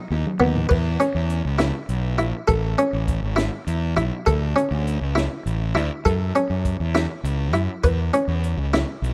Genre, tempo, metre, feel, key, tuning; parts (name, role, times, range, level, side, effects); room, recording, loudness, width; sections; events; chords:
math rock and midwest emo; 67 BPM (dotted quarters); 6/8; straight; A4 = 440 Hz
buff-stop harpsichord; arpeggios; 0.0-9.1 s; B3 to B4; -26 LUFS; equal
fuzz fingered electric bass; bass; 0.1-9.1 s; G#1 to F#2; -25 LUFS; equal; overdrive
compact cocktail drum kit; drums; 0.1-9.1 s; crash cymbal, hi-hat, kick drum, snare drum, toms; -28 LUFS; equal
light reverb; rough home demo mix; -22 LUFS; mono
0.7-9.1 A section
drum fill 0.0-0.7
0.0 B; 0.7 E5; 2.5 Amaj7; 4.3 D5; 6.1 F#m7; 7.8 E5